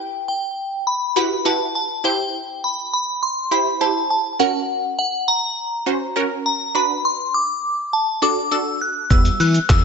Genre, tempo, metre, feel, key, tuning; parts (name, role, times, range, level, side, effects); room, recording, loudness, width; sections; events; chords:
dance-pop; 102 BPM; 4/4; straight; E minor; A4 = 440 Hz
glassy synth bell; melody; 0.0-9.8 s; F#5 to F#6; -20 LUFS; equal; chorus, phaser, ping-pong delay
wide unison pluck; accompaniment; 0.0-9.8 s; G3 to G5; -23 LUFS; right 2 dB; phaser, sidechain pumping
chorused synth bass; bass; 9.1-9.8 s; E2 to E3; -17 LUFS; left 1 dB; sidechain pumping
lo-fi sampler-style drum kit; drums; 9.1-9.8 s; handclaps, hi-hat, kick drum, shaker, snare drum; -16 LUFS; equal
light reverb, digital ambience; nothing above 7.9 kHz; -18 LUFS; side -5 dB against mid
0.0-9.8 A section
0.0 Emadd9; 2.0 C; 4.4 F#; 6.8 Bm; 9.1 Emadd9